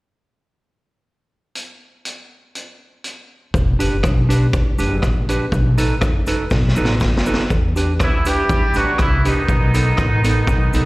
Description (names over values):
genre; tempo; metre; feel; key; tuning
ska; 121 BPM; 4/4; straight; E minor; A4 = 440 Hz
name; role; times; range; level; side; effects
street-band drum kit; drums; 1.6-10.8 s; hi-hat, kick drum, rim click, snare drum; -20 LUFS; equal; none
upright bass; bass; 3.5-10.9 s; E1 to E2; -18 LUFS; equal; none
cabasa; percussion; 3.6-10.8 s; none; -41 LUFS; left 3 dB; none
mellow electric guitar; accompaniment; 3.8-10.9 s; B3 to B4; -24 LUFS; right 2 dB; plate reverb, slapback echo
clear horn section; melody; 8.0-10.9 s; D#3 to G4; -20 LUFS; right 1 dB; dub echo, plate reverb, slapback echo
room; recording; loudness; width
little or no reverb; live gig heard through the venue's PA, recital hall reverb; -15 LUFS; side -21 dB against mid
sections
1.6-3.5 A section; 3.5-7.5 B section; 7.5-10.9 C section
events
drum fill 6.5-7.5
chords
1.6 N.C.; 3.5 Em7 (rootless); 5.5 B7; 7.5 Em7; 9.5 B7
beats
| 1.56 2.05 2.55 3.04 | 3.54 4.04 4.53 5.03 | 5.52 6.02 6.51 7.01 | 7.50 8.00 8.49 8.99 | 9.48 9.98 10.48